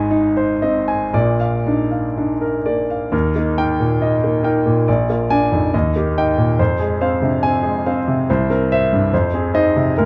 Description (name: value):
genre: classical, romantic character piece for solo piano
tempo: 58-74 BPM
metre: 2/4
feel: rubato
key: Eb major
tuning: A4 = 440 Hz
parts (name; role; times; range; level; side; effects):
- warm grand piano; solo; 0.0-10.1 s; Ab1 to Ab5; -18 LUFS; equal; none
room: moderate large studio reverb, RT60 0.8 s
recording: dark, warm production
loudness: -18 LUFS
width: mono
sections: 0.0-3.1 A section; 3.1-10.1 B section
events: none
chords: 0.0 Ab; 1.1 Bb; 3.1 Eb; 4.9 Bb7; 5.7 Eb; 6.6 Fm; 8.3 C7; 9.1 Fm7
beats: 0.11 | 1.13 2.16 | 3.13 4.01 | 4.87 5.73 | 6.59 7.43 | 8.28 9.12 | 9.94